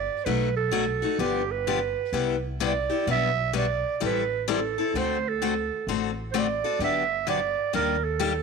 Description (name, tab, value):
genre	acoustic string swing (jazz manouche)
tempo	128 BPM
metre	4/4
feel	swing 64% on 8ths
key	G major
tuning	A4 = 438 Hz
part	growling clarinet	melody	0.0-8.4 s	G4 to E5	-26 LUFS	right 10 dB	none
part	upright bass	bass	0.0-8.4 s	G1 to Eb2	-32 LUFS	right 1 dB	none
part	picked steel-string acoustic guitar	accompaniment	0.3-8.3 s	B2 to A4	-28 LUFS	left 11 dB	none
room	moderate echo chamber reverb, RT60 1.5 s, small room ambience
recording	1960s-style stereo with parts hard left and right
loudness	-24 LUFS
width	side -5 dB against mid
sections	0.0-8.4 A section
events	none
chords	0.3 B7; 1.2 G7; 2.1 Cmaj7; 3.1 Gmaj7/B; 4.0 Am7; 4.9 D7; 6.8 Gmaj7; 7.7 Ebmaj7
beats	0.26 0.73 | 1.20 1.66 2.13 2.60 | 3.07 3.53 4.00 4.47 | 4.94 5.40 5.87 6.34 | 6.81 7.27 7.74 8.21